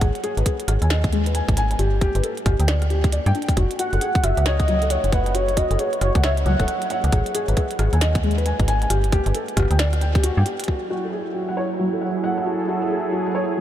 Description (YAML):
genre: IDM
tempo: 135 BPM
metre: 4/4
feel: swing 62% on 16ths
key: F# dorian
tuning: A4 = 440 Hz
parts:
  - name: felt-muted upright piano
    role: arpeggios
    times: 0.0-13.6 s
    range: F#3 to G#5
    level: -25 LUFS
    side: left 2 dB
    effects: vintage 12-bit sampler grit, low-pass filter, tape echo
  - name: metallic FM bass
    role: bass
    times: 0.0-10.4 s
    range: E1 to G2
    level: -20 LUFS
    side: equal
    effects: none
  - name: electronic kick drum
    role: drums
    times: 0.0-10.8 s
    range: none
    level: -21 LUFS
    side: equal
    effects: overdrive
  - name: glitchy drum kit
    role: drums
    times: 0.0-10.7 s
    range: hi-hat, rim click, snare drum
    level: -30 LUFS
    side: right 1 dB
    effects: overdrive, tape echo
  - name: warm velvety synth lead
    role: melody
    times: 3.8-6.9 s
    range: B4 to F#5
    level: -28 LUFS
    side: equal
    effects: chorus, tape echo
  - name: warm analog pad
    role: sustained chords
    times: 10.7-13.6 s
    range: F#3 to A4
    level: -24 LUFS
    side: right 3 dB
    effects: chorus
room: moderate huge ambient reverb, RT60 9.1 s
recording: dreamy mix soaked in reverb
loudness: -18 LUFS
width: side -11 dB against mid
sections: 0.0-10.7 A section; 10.7-13.6 B section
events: drum fill 10.5; filter sweep on felt piano 10.7-13.6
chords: 0.0 G#5; 1.8 G5; 3.6 F#5; 7.1 G#5; 8.9 G5; 10.7 F#m9